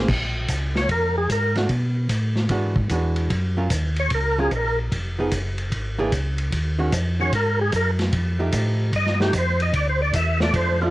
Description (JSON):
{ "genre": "soul jazz organ trio", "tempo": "149 BPM", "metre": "4/4", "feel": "swing 66% on 8ths", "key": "unclear", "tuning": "A4 = 436 Hz", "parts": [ { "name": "archtop guitar, miked and amplified", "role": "accompaniment", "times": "0.0-10.9 s", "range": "Eb3 to Bb4", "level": "-26 LUFS", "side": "right 2 dB", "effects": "cassette tape, plate reverb" }, { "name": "mellow tonewheel organ", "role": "bass", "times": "0.0-10.9 s", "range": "F1 to B2", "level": "-23 LUFS", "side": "equal", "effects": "slow rotary speaker" }, { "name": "vintage drum kit", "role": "drums", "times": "0.1-10.7 s", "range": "crash cymbal, hi-hat, kick drum, ride cymbal, snare drum", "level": "-26 LUFS", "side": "equal", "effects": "none" }, { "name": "percussive tonewheel organ", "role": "melody", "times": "0.8-1.6, 4.0-4.8, 7.2-10.9 s", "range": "F4 to E5", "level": "-22 LUFS", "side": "equal", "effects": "slow rotary speaker, overdrive, chorus vibrato, cassette tape, plate reverb" } ], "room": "light reverb", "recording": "home recording on cassette", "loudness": "-20 LUFS", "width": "side -17 dB against mid", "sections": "0.1-10.9 A section", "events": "tonewheel organ solo 0.0-10.9", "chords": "0.1 Bbm7; 1.7 Asus2; 2.5 E9; 3.3 Gbmaj7; 4.9 Fm7b5; 5.7 E7#11; 6.5 Ebm11; 8.1 F9; 9.7 Dm9", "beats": "| 0.08 0.49 0.89 1.29 | 1.69 2.10 2.50 2.90 | 3.30 3.71 4.11 4.51 | 4.91 5.31 5.71 6.12 | 6.52 6.92 7.32 7.72 | 8.12 8.53 8.93 9.33 | 9.73 10.13 10.54" }